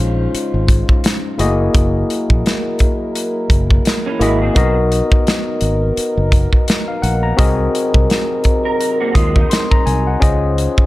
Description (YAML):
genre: lush 1970s-style soul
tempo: 85 BPM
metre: 4/4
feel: swing 58% on 16ths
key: unclear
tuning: A4 = 440 Hz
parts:
  - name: overdriven tine electric piano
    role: accompaniment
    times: 0.0-10.9 s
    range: Ab3 to Eb6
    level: -19 LUFS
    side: left 3 dB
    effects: none
  - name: warm French horn section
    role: sustained chords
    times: 0.0-10.9 s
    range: C3 to C5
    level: -24 LUFS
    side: right 1 dB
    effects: none
  - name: fingered electric bass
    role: bass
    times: 0.0-10.8 s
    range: Gb1 to Eb2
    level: -17 LUFS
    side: equal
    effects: none
  - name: modern studio drum kit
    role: drums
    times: 0.3-10.9 s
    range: hi-hat, kick drum, snare drum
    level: -15 LUFS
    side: equal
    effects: none
  - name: electric guitar through a small old amp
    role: riff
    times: 4.1-10.2 s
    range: Fb3 to Bb4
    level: -22 LUFS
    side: right 4 dB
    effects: ensemble chorus
room: studio reverb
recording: dark, warm production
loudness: -13 LUFS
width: side -17 dB against mid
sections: 0.0-10.9 A section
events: none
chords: 0.0 Dbmaj9; 1.4 Gb13; 4.6 Cbmaj7; 7.4 Ab9/C; 10.2 Dbmaj9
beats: 0.33 1.04 | 1.74 2.45 3.15 3.86 | 4.56 5.27 5.97 6.68 | 7.39 8.10 8.80 9.51 | 10.22